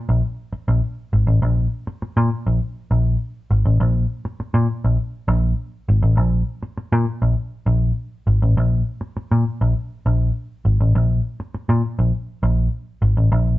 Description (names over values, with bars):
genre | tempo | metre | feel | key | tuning
funk | 101 BPM | 4/4 | straight | unclear | A4 = 440 Hz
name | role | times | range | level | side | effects
vintage muted picked electric bass | solo | 0.1-13.6 s | Ab1 to Bb2 | -17 LUFS | equal | none
room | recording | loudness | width
wet studio reverb, RT60 0.8 s | band playing live in one room, nothing above 7.9 kHz | -18 LUFS | side -16 dB against mid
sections
0.0-1.4 A section; 1.4-13.6 A section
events
none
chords
none